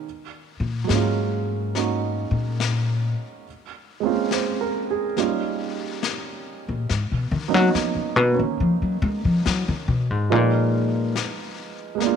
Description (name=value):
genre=jazz ballad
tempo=70 BPM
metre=4/4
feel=swing 66% on 8ths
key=unclear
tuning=A4 = 437 Hz
part: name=warm concert grand piano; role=accompaniment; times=0.0-12.2 s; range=F3 to C5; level=-25 LUFS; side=right 8 dB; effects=none
part: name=brushed snare drum and snare drum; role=drums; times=0.0-12.2 s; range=none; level=-31 LUFS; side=left 9 dB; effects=none
part: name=upright bass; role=bass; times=0.6-11.2 s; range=Ab2 to Ab3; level=-21 LUFS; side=left 2 dB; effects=none
room=light reverb, small room ambience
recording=1960s-style stereo with parts hard left and right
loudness=-20 LUFS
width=side -7 dB against mid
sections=0.0-12.2 A section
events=upright bass solo 0.0-12.2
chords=0.0 Gbmaj9; 3.5 Bbm9; 5.2 Eb7; 6.9 Abm11; 10.3 Fm7b5